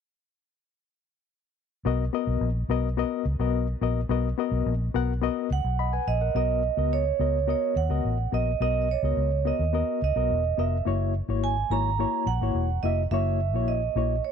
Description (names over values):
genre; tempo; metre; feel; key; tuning
uptempo 1960s-style soul; 106 BPM; 4/4; straight; B major; A4 = 441 Hz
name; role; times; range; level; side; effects
barky reed electric piano; accompaniment; 1.9-14.1 s; A#3 to B5; -29 LUFS; left 16 dB; tremolo
vintage muted fingered electric bass; bass; 1.9-14.2 s; E1 to D#2; -26 LUFS; equal; none
vibraphone with medium hard mallets; melody; 5.5-14.3 s; C#5 to A#5; -27 LUFS; right 14 dB; none
room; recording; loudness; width
small room ambience; 1960s-style stereo with parts hard left and right; -24 LUFS; side -7 dB against mid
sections
1.9-6.3 A section; 6.3-14.3 B section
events
none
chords
1.9 Bmaj7; 10.9 F#7